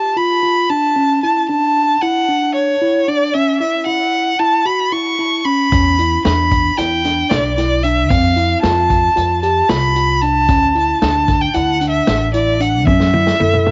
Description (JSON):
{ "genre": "progressive instrumental, band music in an uneven meter", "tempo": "227 BPM (eighths)", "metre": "9/8", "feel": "straight", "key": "unclear", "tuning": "A4 = 441 Hz", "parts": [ { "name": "clear violin", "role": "melody", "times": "0.0-13.7 s", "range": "C#5 to C#6", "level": "-18 LUFS", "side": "equal", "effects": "cassette tape, analog delay" }, { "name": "mellow tine electric piano", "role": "arpeggios", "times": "0.0-13.7 s", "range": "C4 to G4", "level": "-21 LUFS", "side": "equal", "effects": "cassette tape" }, { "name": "upright bass", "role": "bass", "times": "5.7-13.7 s", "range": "A1 to F#2", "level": "-21 LUFS", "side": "equal", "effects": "none" }, { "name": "vintage drum kit", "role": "drums", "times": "5.7-13.7 s", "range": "hi-hat, kick drum, snare drum, toms", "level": "-22 LUFS", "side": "equal", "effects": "cassette tape" }, { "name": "vibraphone with medium mallets", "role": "second line", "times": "13.4-13.7 s", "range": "A4", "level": "-20 LUFS", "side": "equal", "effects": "cassette tape" } ], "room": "moderate booth ambience, RT60 0.3 s", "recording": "home recording on cassette, nothing above 7.6 kHz", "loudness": "-15 LUFS", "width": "mono", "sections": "0.0-13.7 A section", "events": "drum fill 12.9-13.7", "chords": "0.0 F5; 1.0 Dmaj7; 3.3 F#5; 5.7 Em7; 8.1 F; 10.5 D5; 12.9 F#5" }